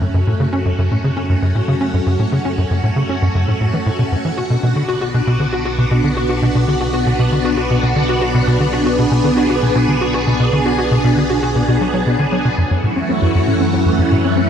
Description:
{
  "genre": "ambient, sequencer-driven space music",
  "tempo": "117 BPM",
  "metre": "4/4",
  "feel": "straight",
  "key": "F# minor",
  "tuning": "A4 = 441 Hz",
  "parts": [
    { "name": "phased string machine", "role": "sustained chords", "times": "0.0-14.5 s", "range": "E3 to G#4", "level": "-18 LUFS", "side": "equal", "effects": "ensemble chorus, phaser" },
    { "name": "tight sequencer bass", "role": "riff", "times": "0.0-14.4 s", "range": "F#2 to F#4", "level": "-16 LUFS", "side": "equal", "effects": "ensemble chorus, ping-pong delay" },
    { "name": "analog drone", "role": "bass", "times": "0.0-14.5 s", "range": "B1 to F#2", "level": "-24 LUFS", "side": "equal", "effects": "chorus" }
  ],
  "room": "wet lush hall reverb, RT60 2.7 s",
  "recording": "dreamy mix soaked in reverb",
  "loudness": "-14 LUFS",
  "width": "side -8 dB against mid",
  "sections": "0.0-12.6 A section; 12.6-14.5 B section",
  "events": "fade-in on string machine 0.0-12.6",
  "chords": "0.0 F#m; 4.4 Bm; 12.6 F#m7"
}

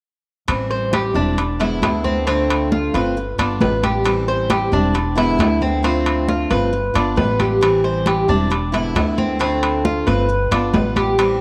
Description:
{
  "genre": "latin, Cuban son and guajira",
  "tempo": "135 BPM",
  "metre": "4/4",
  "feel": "straight",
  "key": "A minor",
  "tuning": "A4 = 439 Hz",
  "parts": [
    { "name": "picked steel-string acoustic guitar", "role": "accompaniment", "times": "0.5-11.4 s", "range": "D3 to F4", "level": "-25 LUFS", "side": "equal", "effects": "none" },
    { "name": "upright bass", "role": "bass", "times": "0.5-11.4 s", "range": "E1 to D2", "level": "-25 LUFS", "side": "equal", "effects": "none" },
    { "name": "congas", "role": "percussion", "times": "0.5-11.4 s", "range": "none", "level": "-26 LUFS", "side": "equal", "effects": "none" },
    { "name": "timbales", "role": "percussion", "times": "0.5-11.4 s", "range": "none", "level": "-26 LUFS", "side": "equal", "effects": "none" },
    { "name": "Cuban tres", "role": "arpeggios", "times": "0.7-11.4 s", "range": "C4 to C5", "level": "-22 LUFS", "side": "equal", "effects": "none" }
  ],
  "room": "moderate plate reverb, RT60 2.9 s",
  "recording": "none",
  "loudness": "-18 LUFS",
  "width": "mono",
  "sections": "0.5-11.4 A section",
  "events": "none",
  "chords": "0.5 Am7; 1.4 E7; 2.3 Dm7; 3.2 G7; 4.1 Am7; 4.9 E7; 5.8 Dm7; 6.7 G7; 7.6 Am7; 8.5 E7; 9.4 Dm7; 10.3 G7"
}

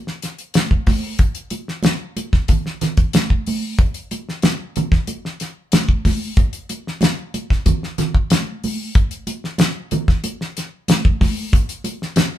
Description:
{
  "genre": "funk",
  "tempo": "93 BPM",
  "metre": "4/4",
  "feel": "straight",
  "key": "none",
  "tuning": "none",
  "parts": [
    { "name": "damped 70s drum kit", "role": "drums", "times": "0.1-12.3 s", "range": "hi-hat, kick drum, snare drum", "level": "-17 LUFS", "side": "equal", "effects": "none" },
    { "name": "congas", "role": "percussion", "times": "0.6-12.3 s", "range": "none", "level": "-25 LUFS", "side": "right 2 dB", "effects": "none" }
  ],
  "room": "moderate studio ambience, RT60 0.5 s",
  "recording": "band playing live in one room",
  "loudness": "-17 LUFS",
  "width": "side -12 dB against mid",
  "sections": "0.0-8.9 A section; 8.9-12.4 B section",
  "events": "none",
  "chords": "none"
}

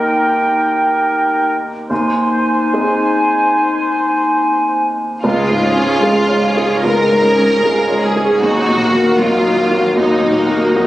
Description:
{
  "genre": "cinematic",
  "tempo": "71-78 BPM",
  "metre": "4/4",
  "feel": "rubato",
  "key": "Db major",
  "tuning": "A4 = 440 Hz",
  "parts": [
    { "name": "mellow clarinet", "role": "second line", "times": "0.0-4.9 s", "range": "Eb4", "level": "-22 LUFS", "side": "left 5 dB", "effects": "none" },
    { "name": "silver concert flute", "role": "second line", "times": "0.0-4.9 s", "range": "G5 to Ab5", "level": "-16 LUFS", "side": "right 1 dB", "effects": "none" },
    { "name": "warm oboe", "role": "second line", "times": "0.0-4.9 s", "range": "Bb4 to C5", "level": "-20 LUFS", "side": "equal", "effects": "none" },
    { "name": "warm baby grand piano", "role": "accompaniment", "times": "0.0-10.9 s", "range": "Db2 to Db5", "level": "-17 LUFS", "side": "equal", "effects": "none" },
    { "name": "rich studio violin section", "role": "second line", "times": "5.2-10.9 s", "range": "Eb4 to Bb4", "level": "-16 LUFS", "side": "left 1 dB", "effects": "none" },
    { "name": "warm studio viola section", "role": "accompaniment", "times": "5.2-10.9 s", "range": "Gb3 to Ab4", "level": "-18 LUFS", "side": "right 1 dB", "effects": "none" },
    { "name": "warm studio cello section", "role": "bass", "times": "5.2-10.9 s", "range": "Db2 to Eb2", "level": "-23 LUFS", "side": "right 2 dB", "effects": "none" }
  ],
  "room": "wet scoring stage reverb, RT60 2.0 s",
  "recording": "recorded on a phone in the room, club reverb",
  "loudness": "-12 LUFS",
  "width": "side -15 dB against mid",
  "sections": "0.0-5.2 A section; 5.2-10.9 B section",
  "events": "none",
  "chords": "0.0 Eb; 1.9 Ab/Eb; 5.2 Db; 8.4 Ebm"
}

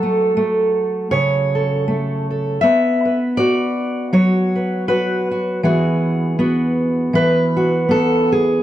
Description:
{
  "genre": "folk, solo fingerstyle acoustic guitar",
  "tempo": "80 BPM",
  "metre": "4/4",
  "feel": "swing 55% on 8ths",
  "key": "unclear",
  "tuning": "A4 = 441 Hz",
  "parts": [
    { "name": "fingerpicked steel-string acoustic guitar", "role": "solo", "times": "0.0-8.6 s", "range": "C#3 to E5", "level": "-15 LUFS", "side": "equal", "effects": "none" }
  ],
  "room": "studio reverb",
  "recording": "dry, close 1970s-style studio recording",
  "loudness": "-15 LUFS",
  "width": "side -12 dB against mid",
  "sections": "0.0-8.6 A section",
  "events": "none",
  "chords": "0.0 F#m; 2.6 Bm; 5.6 Eadd9"
}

